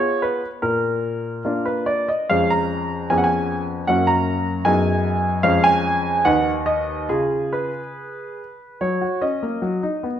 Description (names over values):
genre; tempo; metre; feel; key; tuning
classical-period piano sonatina; 69-78 BPM; 2/4; rubato; unclear; A4 = 437 Hz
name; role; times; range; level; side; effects
clear baby grand piano; solo; 0.0-10.2 s; D#2 to A#5; -18 LUFS; equal; none
room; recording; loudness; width
moderate recital hall reverb, RT60 1.5 s; none; -18 LUFS; side -9 dB against mid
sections
0.0-8.8 A section; 8.8-10.2 B section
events
none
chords
0.0 Fdim; 0.6 Bb; 2.3 C#/E#; 3.1 C#7/E#; 3.9 F#; 4.7 G#m7/F#; 5.4 C#/E#; 6.2 B/D#; 7.1 C#; 8.8 F#; 9.6 G#m7/F# (rootless)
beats
| 0.62 1.44 | 2.30 3.11 | 3.88 4.65 | 5.44 6.25 | 7.10 7.96 | 8.81 9.62